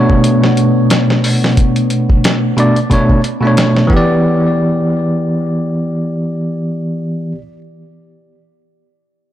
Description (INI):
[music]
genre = trip hop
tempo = 90 BPM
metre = 4/4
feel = swing 57% on 16ths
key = E dorian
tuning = A4 = 440 Hz
[part]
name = bell-like tine electric piano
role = accompaniment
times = 0.0-7.4 s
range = B2 to D5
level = -12 LUFS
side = equal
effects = harmonic tremolo, vintage 12-bit sampler grit, tape echo
[part]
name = warbly tape-like pad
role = sustained chords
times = 0.0-3.9 s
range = B3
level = -21 LUFS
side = left 3 dB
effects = chorus, built-in reverb, vintage 12-bit sampler grit
[part]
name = dusty soul sampler-style drum kit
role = drums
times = 0.1-4.1 s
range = hi-hat, kick drum, snare drum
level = -14 LUFS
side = equal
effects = none
[sound]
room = light reverb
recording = blown-out, overdriven recording, overdrive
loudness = -11 LUFS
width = side -12 dB against mid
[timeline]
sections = 0.0-4.2 A section; 4.2-6.9 B section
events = none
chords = 0.0 Bm9; 3.9 Em7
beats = 0.23 0.90 | 1.57 2.23 2.90 3.57 | 4.23 4.90 5.57 6.23